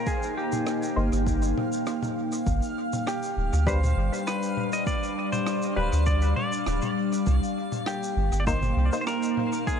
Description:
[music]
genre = ambient dub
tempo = 100 BPM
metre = 4/4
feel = straight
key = C minor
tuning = A4 = 442 Hz
[part]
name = clean lap steel guitar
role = melody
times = 0.0-9.8 s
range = G4 to Eb5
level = -32 LUFS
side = equal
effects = dub echo
[part]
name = deep dark ambient pad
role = sustained chords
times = 0.0-9.8 s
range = G3 to G5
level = -29 LUFS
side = equal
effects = chorus, built-in reverb
[part]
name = backwards swelling texture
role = texture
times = 0.0-9.8 s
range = F5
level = -38 LUFS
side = equal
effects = built-in reverb
[part]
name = compact cocktail drum kit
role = drums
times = 0.1-9.8 s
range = rim click, shaker, toms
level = -36 LUFS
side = left 2 dB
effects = dub echo
[part]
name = electronic kick drum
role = drums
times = 0.1-9.8 s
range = none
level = -30 LUFS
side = equal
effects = overdrive
[part]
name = filtered dub chord stab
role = stabs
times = 1.0-9.0 s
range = G3 to C5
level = -36 LUFS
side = left 3 dB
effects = chorus, vintage 12-bit sampler grit, dub echo
[part]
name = soft dub sub bass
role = bass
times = 1.0-8.9 s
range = D1 to D2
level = -24 LUFS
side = equal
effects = none
[sound]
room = light reverb, small room ambience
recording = nothing above 11.0 kHz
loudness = -24 LUFS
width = side -7 dB against mid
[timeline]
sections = 0.0-9.8 A section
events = none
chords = 0.0 Cm7; 2.5 G5; 7.3 Cm7

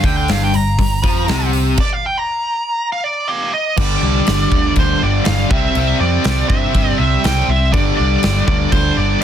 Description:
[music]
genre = hard rock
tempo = 121 BPM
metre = 4/4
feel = straight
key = G minor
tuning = A4 = 440 Hz
[part]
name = nasal lead guitar with a parked wah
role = melody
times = 0.0-9.2 s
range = G4 to Bb5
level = -19 LUFS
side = right 2 dB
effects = overdrive, tape echo
[part]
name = distorted electric guitar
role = riff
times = 0.0-9.2 s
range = G2 to C4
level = -22 LUFS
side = right 12 dB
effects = overdrive
[part]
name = distorted electric guitar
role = riff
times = 0.0-9.2 s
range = G2 to C4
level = -24 LUFS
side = equal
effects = distortion
[part]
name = overdriven electric guitar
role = riff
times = 0.0-9.2 s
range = G2 to C4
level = -22 LUFS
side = left 14 dB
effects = tremolo
[part]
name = picked electric bass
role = bass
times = 0.0-9.1 s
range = G1 to G2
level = -18 LUFS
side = equal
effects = none
[part]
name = big rock drum kit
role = drums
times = 0.0-9.2 s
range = crash cymbal, hi-hat, kick drum, snare drum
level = -19 LUFS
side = equal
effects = none
[sound]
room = little or no reverb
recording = dense, heavily limited modern master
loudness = -13 LUFS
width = side -9 dB against mid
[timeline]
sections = 0.0-3.8 A section; 3.8-9.2 B section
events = lead electric guitar solo 0.0-3.8; stop 1.8-3.8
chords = 0.0 G5; 5.5 C; 7.7 G5

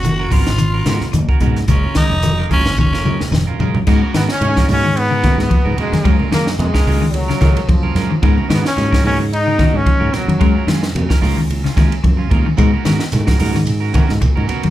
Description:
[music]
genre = afrobeat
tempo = 110 BPM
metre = 4/4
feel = swing 55% on 16ths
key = G# dorian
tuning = A4 = 440 Hz
[part]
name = raspy tenor saxophone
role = melody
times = 0.0-3.3 s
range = C#4 to F#4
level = -21 LUFS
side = left 1 dB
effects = none
[part]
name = semi-hollow electric guitar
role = arpeggios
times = 0.0-14.7 s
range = B2 to G#3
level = -20 LUFS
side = left 3 dB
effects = none
[part]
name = fingered electric bass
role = bass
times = 0.0-14.7 s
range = E#1 to G#2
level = -19 LUFS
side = equal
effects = none
[part]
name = compact cocktail drum kit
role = drums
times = 0.0-14.7 s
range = crash cymbal, hi-hat, kick drum, ride cymbal, snare drum, toms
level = -17 LUFS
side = equal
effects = none
[part]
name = congas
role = percussion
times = 0.0-14.6 s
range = none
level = -24 LUFS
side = right 1 dB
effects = none
[part]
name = shekere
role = percussion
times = 0.0-3.7, 12.6-14.6 s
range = none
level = -24 LUFS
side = right 2 dB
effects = none
[part]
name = clean electric guitar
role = stabs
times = 0.2-14.7 s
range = G#3 to A#4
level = -24 LUFS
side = right 6 dB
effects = tape echo
[part]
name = clear trombone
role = melody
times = 4.2-10.7 s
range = F#3 to D#4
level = -19 LUFS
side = left 2 dB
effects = none
[part]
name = clear trumpet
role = second line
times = 4.2-10.7 s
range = F#3 to D#4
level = -27 LUFS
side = right 3 dB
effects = none
[part]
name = bright trombone section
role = second line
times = 6.3-8.4 s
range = E#3 to A#3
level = -23 LUFS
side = left 2 dB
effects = none
[sound]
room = moderate large studio reverb, RT60 1.1 s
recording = band playing live in one room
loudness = -13 LUFS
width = side -14 dB against mid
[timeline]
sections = 0.0-3.9 A section; 3.9-14.7 B section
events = tenor saxophone solo 0.0-3.9; drum fill 2.8-3.9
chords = 0.0 G#m11; 1.7 F#maj9; 3.9 G#m11; 6.1 F#maj9; 8.2 G#m11; 10.4 F#maj9; 12.6 G#m11

